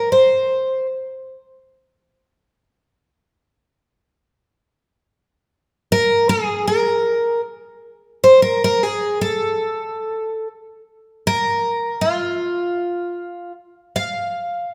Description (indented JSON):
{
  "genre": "fado",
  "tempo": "78 BPM",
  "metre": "2/4",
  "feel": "rubato",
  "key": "unclear",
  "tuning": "A4 = 441 Hz",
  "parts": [
    { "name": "picked twelve-string acoustic guitar", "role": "solo", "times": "0.0-0.9, 5.9-14.7 s", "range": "F4 to F5", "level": "-19 LUFS", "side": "equal", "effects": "none" }
  ],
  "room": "moderate recital hall reverb, RT60 1.7 s",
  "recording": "none",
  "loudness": "-19 LUFS",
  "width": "mono",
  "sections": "0.0-7.8 A section; 7.8-14.7 A section",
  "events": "none",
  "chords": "none"
}